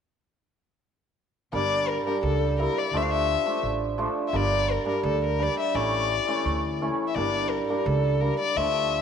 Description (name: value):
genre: klezmer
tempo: 85 BPM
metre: 2/4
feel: straight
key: G dorian sharp4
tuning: A4 = 439 Hz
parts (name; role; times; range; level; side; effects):
- warm violin; melody; 1.5-9.0 s; A4 to F5; -27 LUFS; left 9 dB; none
- hammered dulcimer; accompaniment; 1.5-9.0 s; E3 to E4; -26 LUFS; right 3 dB; none
- upright bass; bass; 1.5-9.0 s; G1 to D2; -29 LUFS; right 2 dB; none
room: moderate echo chamber reverb, RT60 2.2 s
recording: none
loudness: -23 LUFS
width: side -7 dB against mid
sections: 1.5-9.0 A section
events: none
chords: 1.5 Gm; 2.9 Dm; 4.3 Gm; 5.8 A; 7.2 Gm